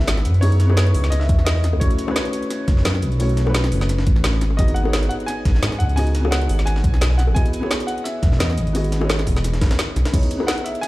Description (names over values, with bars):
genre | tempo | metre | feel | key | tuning
liquid drum and bass | 173 BPM | 4/4 | swing 54% on 16ths | C# minor | A4 = 441 Hz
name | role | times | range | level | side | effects
clear grand piano | melody | 0.0-10.9 s | C#5 to G#5 | -30 LUFS | equal | dub echo
felt-muted upright piano | accompaniment | 0.0-10.9 s | A3 to D#5 | -26 LUFS | equal | ping-pong delay
smooth synth bass | bass | 0.0-10.0 s | E1 to G#2 | -18 LUFS | equal | none
breakbeat sampler-style drum kit | drums | 0.0-10.9 s | hi-hat, snare drum | -29 LUFS | equal | high-pass filter on hats, high-pass filter on snare
garage drum kit | drums | 0.1-10.9 s | crash cymbal, hi-hat, snare drum | -27 LUFS | equal | overdrive
bongos | percussion | 0.1-10.5 s | none | -31 LUFS | left 4 dB | none
electronic kick drum | drums | 1.3-10.2 s | none | -18 LUFS | equal | overdrive
room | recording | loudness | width
little or no reverb | played on a big sound system in a bare room, large studio reverb | -16 LUFS | side -18 dB against mid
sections
0.0-10.9 A section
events
kick drops out 9.8-10.1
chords
0.0 C#m9; 1.8 F#m7; 4.4 G#m7; 7.4 Emaj9; 10.1 C#m9